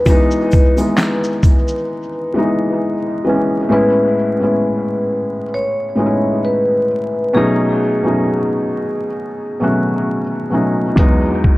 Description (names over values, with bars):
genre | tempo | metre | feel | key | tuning
lo-fi hip hop | 66 BPM | 4/4 | swing 56% on 16ths | unclear | A4 = 438 Hz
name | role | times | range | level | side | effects
vibraphone with soft mallets | melody | 0.0-10.5 s | G#4 to C#5 | -19 LUFS | equal | low-pass filter, dub echo
felt-muted upright piano | accompaniment | 0.0-11.6 s | E2 to F#4 | -16 LUFS | equal | low-pass filter, dub echo
lo-fi sampler-style drum kit | drums | 0.1-1.9, 11.0-11.6 s | handclaps, hi-hat, kick drum, shaker, snare drum | -12 LUFS | equal | none
egg shaker | percussion | 0.1-1.7 s | none | -40 LUFS | right 2 dB | none
room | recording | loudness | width
moderate spring reverb, RT60 2.2 s | echo-heavy mix, vinyl crackle | -14 LUFS | side -19 dB against mid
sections
0.0-3.7 A section; 3.7-11.6 B section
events
break 1.9-3.7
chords
0.1 C#m9/E (rootless); 3.7 Amaj9; 7.3 B7; 11.0 Emaj7